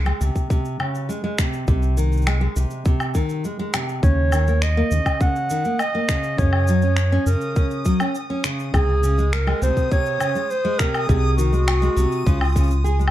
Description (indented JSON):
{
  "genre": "folktronica",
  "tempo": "102 BPM",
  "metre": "4/4",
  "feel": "straight",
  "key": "unclear",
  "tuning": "A4 = 436 Hz",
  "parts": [
    { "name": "nylon-string guitar", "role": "arpeggios", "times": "0.0-13.1 s", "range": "C3 to Ab4", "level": "-25 LUFS", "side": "equal", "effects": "tape echo" },
    { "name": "round analog bass", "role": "bass", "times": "0.0-13.1 s", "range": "C2 to Gb2", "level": "-19 LUFS", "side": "equal", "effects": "none" },
    { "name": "electronic woodblock, cabasa and finger snaps", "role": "drums", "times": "0.1-13.1 s", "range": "none", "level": "-27 LUFS", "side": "left 1 dB", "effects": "none" },
    { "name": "electronic kick drum", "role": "drums", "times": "0.4-12.7 s", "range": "none", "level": "-20 LUFS", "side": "equal", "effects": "none" },
    { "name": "mellow clarinet", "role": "melody", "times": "4.0-13.1 s", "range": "F4 to Gb5", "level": "-24 LUFS", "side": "right 1 dB", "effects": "tape echo" },
    { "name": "backwards swelling texture", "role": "texture", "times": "5.3-13.1 s", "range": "Eb6", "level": "-35 LUFS", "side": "equal", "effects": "built-in reverb" }
  ],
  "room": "light reverb",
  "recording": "dark, warm production",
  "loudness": "-18 LUFS",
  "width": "side -13 dB against mid",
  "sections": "0.0-13.1 A section",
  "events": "none",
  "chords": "0.0 Db5; 1.7 Ab/C; 4.0 Ebm7; 6.4 Gb; 8.7 Db5; 11.1 Ab7/C; 12.3 Db",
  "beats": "0.50 1.09 | 1.68 2.27 2.85 3.44 | 4.03 4.62 5.21 5.79 | 6.38 6.97 7.56 8.15 | 8.74 9.32 9.91 10.50 | 11.09 11.68 12.27 12.85"
}